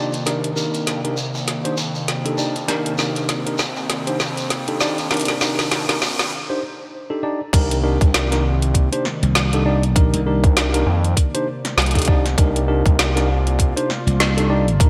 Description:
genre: glitch hop.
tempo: 99 BPM.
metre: 4/4.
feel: swing 58% on 16ths.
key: C minor.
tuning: A4 = 441 Hz.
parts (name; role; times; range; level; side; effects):
warm analog pad; sustained chords; 0.0-14.9 s; C3 to D5; -30 LUFS; equal; chorus, sidechain pumping.
mellow tine electric piano; stabs; 0.0-14.9 s; D4 to D5; -26 LUFS; equal; sidechain pumping, low-pass filter, digital delay.
gritty driven synth bass; bass; 0.0-13.7 s; C2 to G2; -25 LUFS; equal; tube saturation, high-pass filter.
riser; sound effects; 2.1-6.3 s; none; -37 LUFS; equal; none.
drum and bass drum kit; drums; 0.1-14.9 s; crash cymbal, hi-hat, snare drum; -25 LUFS; equal; gated reverb.
shekere; percussion; 0.1-6.3 s; none; -31 LUFS; equal; none.
electronic kick drum; drums; 7.5-14.9 s; none; -18 LUFS; equal; none.
slap bass; bass; 9.2-10.4, 14.1-14.9 s; C2; -20 LUFS; equal; none.
room: light reverb.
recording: bright 1980s-style digital production.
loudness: -19 LUFS.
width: mono.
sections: 0.0-7.5 A section; 7.5-14.9 B section.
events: build-up 0.0-7.5; drum fill 0.0-6.3; break 6.3-7.5; drop 7.5-14.9.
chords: 0.0 Cm9.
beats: | 0.26 0.86 1.47 2.08 | 2.68 3.29 3.90 4.50 | 5.11 5.71 6.32 6.93 | 7.53 8.14 8.74 9.35 | 9.96 10.56 11.17 11.77 | 12.38 12.99 13.59 14.20 | 14.80.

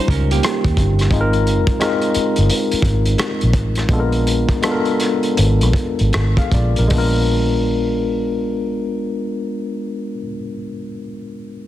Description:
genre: R&B, neo-soul.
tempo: 75-88 BPM.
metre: 4/4.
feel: swing 63% on 16ths.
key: unclear.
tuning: A4 = 440 Hz.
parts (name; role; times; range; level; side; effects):
vintage hollow-body jazz guitar; second line; 0.0-1.1 s; Bb3 to Bb4; -22 LUFS; right 12 dB; none.
tine electric piano; accompaniment; 0.0-11.7 s; G3 to Ab5; -20 LUFS; left 2 dB; medium stereo tremolo.
vintage muted fingered electric bass; bass; 0.1-10.2 s; G1 to Eb2; -17 LUFS; equal; none.
crunchy breakbeat drum kit; drums; 0.1-7.1 s; hi-hat, kick drum, rim click; -20 LUFS; equal; none.
room: light reverb.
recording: dense, heavily limited modern master.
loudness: -15 LUFS.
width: side -13 dB against mid.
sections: 0.0-6.9 A section; 6.9-10.1 B section.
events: slowing down 1.1-6.9.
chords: 0.0 Eb13; 1.1 Ab69; 3.9 Bb7b9.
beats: 0.42 | 1.11 1.79 2.48 3.18 | 3.89 4.61 5.36 6.12 | 6.91 7.71 8.52 9.32.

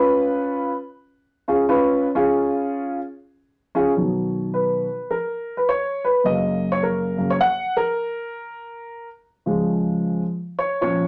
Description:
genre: soul.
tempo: 105 BPM.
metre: 4/4.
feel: swing 62% on 8ths.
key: unclear.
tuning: A4 = 440 Hz.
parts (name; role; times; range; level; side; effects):
dark grand piano; solo; 0.0-11.1 s; F#2 to F#5; -22 LUFS; equal; none.
room: wet small room reverb, RT60 0.5 s.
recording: none.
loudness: -22 LUFS.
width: mono.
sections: 0.0-4.0 A section; 4.0-11.1 B section.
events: grand piano solo 4.0-11.1.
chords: 0.0 C#; 4.0 B; 6.2 F#; 8.5 C#.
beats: 0.55 1.12 | 1.69 2.26 2.83 3.40 | 3.97 4.54 5.11 5.68 | 6.25 6.82 7.39 7.96 | 8.53 9.10 9.67 10.24 | 10.81.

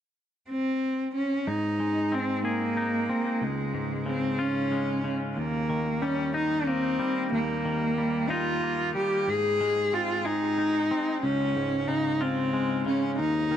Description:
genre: rock.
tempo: 62 BPM (dotted quarters).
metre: 6/8.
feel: straight.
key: Db lydian.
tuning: A4 = 440 Hz.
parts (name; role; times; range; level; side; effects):
clear cello; melody; 0.5-13.6 s; Ab3 to Ab4; -26 LUFS; equal; digital delay.
twangy electric guitar; arpeggios; 1.5-13.6 s; Db2 to Ab4; -30 LUFS; left 2 dB; digital delay.
room: light reverb, studio ambience.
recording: dark, warm production.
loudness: -25 LUFS.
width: side -10 dB against mid.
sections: 0.0-1.5 A section; 1.5-13.6 B section.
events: none.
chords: 0.0 N.C.; 1.5 Ab; 3.4 Db; 5.4 Eb; 9.3 Ab; 11.2 Db.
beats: 0.50 | 1.48 2.45 | 3.42 4.40 | 5.37 6.35 | 7.32 8.30 | 9.28 10.25 | 11.23 12.21 | 13.19.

